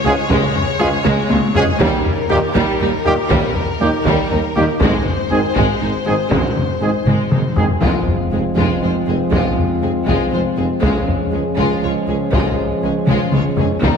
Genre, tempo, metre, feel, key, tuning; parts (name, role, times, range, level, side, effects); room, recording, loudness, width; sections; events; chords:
cinematic, epic orchestral film score; 80 BPM (dotted quarters); 6/8; straight; A4 = 440 Hz
warm symphonic violin section; melody; 0.0-14.0 s; Eb4 to Db5; -25 LUFS; left 6 dB
rich symphonic violin section; second line; 0.0-14.0 s; G3 to F4; -26 LUFS; left 2 dB
warm symphonic viola section; accompaniment; 0.0-14.0 s; G3 to Ab3; -25 LUFS; right 1 dB
warm tuba; bass; 0.0-13.9 s; F1 to Eb2; -25 LUFS; right 3 dB
warm French horn section; sustained chords; 0.1-14.0 s; Bb3 to Bb4; -24 LUFS; left 5 dB
warm trombone section; sustained chords; 0.1-14.0 s; Ab2 to Ab3; -24 LUFS; right 4 dB
warm trumpet section; stabs; 0.1-7.7 s; G4 to Ab4; -24 LUFS; right 1 dB
clear symphonic double bass section; bass; 0.1-13.9 s; F1 to Eb2; -25 LUFS; right 3 dB
rich symphonic cello section; bass; 0.1-13.9 s; Db2 to Ab2; -24 LUFS; right 3 dB
taiko ensemble; drums; 0.3-14.0 s; -20 LUFS; left 1 dB
impact; sound effects; 7.9-9.3 s; -29 LUFS; left 1 dB
wet scoring stage reverb, RT60 1.8 s; heavily compressed radio sound; -14 LUFS; side -6 dB against mid
0.0-7.8 A section; 7.8-14.0 B section
drum fill 1.1-1.8, 7.1-7.8, 13.1-13.8; impact 7.8-9.3
0.0 Db; 1.8 Eb; 4.8 Ab; 7.8 Fm; 10.8 Db